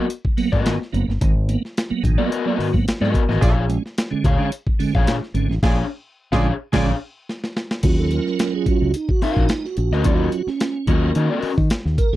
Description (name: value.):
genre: funk.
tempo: 109 BPM.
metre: 4/4.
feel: straight.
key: unclear.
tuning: A4 = 439 Hz.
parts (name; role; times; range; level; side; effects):
raw garage guitar; accompaniment; 0.0-11.5 s; Cb4 to F5; -23 LUFS; left 5 dB; overdrive.
tonewheel organ; stabs; 0.0-12.2 s; Ab2 to Bb4; -22 LUFS; right 5 dB; chorus vibrato, slow rotary speaker.
breakbeat sampler-style drum kit; drums; 0.1-12.2 s; crash cymbal, hi-hat, kick drum, snare drum; -21 LUFS; equal; none.
fingered electric bass; bass; 0.4-12.2 s; F1 to Eb3; -21 LUFS; equal; none.
warm horn section; second line; 3.4-6.9 s; F4 to D5; -25 LUFS; right 3 dB; none.
room: little or no reverb.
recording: dry, close 1970s-style studio recording.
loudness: -18 LUFS.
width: side -15 dB against mid.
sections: 0.0-7.8 A section; 7.8-12.2 B section.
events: band accent 5.6-7.8; drum fill 7.3-7.8; tonewheel organ solo 7.8-12.2.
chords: 0.0 Abm9; 3.4 Bb7#9; 7.8 Ebm7.